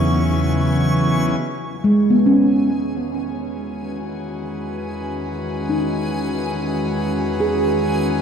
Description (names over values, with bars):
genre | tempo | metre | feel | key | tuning
ambient | 70 BPM | 4/4 | straight | E major | A4 = 440 Hz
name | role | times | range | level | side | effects
airy breathy pad | sustained chords | 0.0-8.2 s | E2 to G#5 | -21 LUFS | equal | chorus, shimmer reverb
handpan | arpeggios | 0.0-8.2 s | G#3 to G#4 | -20 LUFS | right 1 dB | dub echo, shimmer reverb
warm sub bass | bass | 0.0-1.4 s | E2 | -24 LUFS | left 1 dB | tube saturation
backwards swelling texture | texture | 0.0-8.2 s | G#5 to C#6 | -31 LUFS | left 1 dB | built-in reverb, shimmer reverb
room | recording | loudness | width
wet echo chamber reverb, RT60 2.4 s | echo-heavy mix | -18 LUFS | side -7 dB against mid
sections
0.0-1.4 A section; 1.4-8.2 B section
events
fade-in on analog synth pad 1.4-8.2; fade-in on synth texture 1.4-8.2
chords
0.0 Emaj13